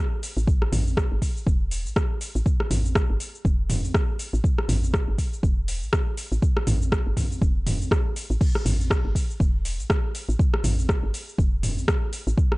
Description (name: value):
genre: afro house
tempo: 121 BPM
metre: 4/4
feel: swing 57% on 16ths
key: unclear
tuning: A4 = 439 Hz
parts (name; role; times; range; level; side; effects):
- deep house drum kit; drums; 0.2-12.6 s; crash cymbal, hi-hat, rim click, shaker, toms; -27 LUFS; equal; overdrive
- woody FM bass; bass; 0.4-12.3 s; E1 to A1; -26 LUFS; equal; sidechain pumping
- electronic kick drum; drums; 0.5-12.5 s; none; -22 LUFS; equal; none
room: little or no reverb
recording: dry, gritty hardware recording, nothing above 10.3 kHz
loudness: -21 LUFS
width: side -22 dB against mid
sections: 0.0-12.6 A section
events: none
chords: none